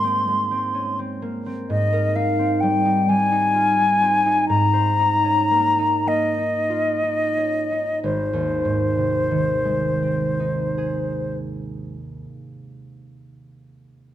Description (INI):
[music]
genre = classical, impressionist duo for flute and harp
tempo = 28-44 BPM (dotted quarters)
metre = 6/8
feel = rubato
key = Ab major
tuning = A4 = 439 Hz
[part]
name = silver concert flute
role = melody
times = 0.0-11.4 s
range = C5 to C6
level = -20 LUFS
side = left 2 dB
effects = none
[part]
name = concert harp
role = accompaniment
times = 0.0-13.3 s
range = Ab1 to Eb5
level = -23 LUFS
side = right 2 dB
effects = none
[sound]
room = moderate recital hall reverb, RT60 1.4 s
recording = close, detailed microphones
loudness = -18 LUFS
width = side -12 dB against mid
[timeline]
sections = 0.0-1.7 A section; 1.7-8.0 B section; 8.0-11.8 C section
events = slowing down 0.3-8.0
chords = 0.0 Abadd9; 1.7 Abmaj9; 4.5 Bbm11/Ab; 8.0 Ab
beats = 0.27 | 1.70 3.09 | 4.49 6.07 | 8.03 9.92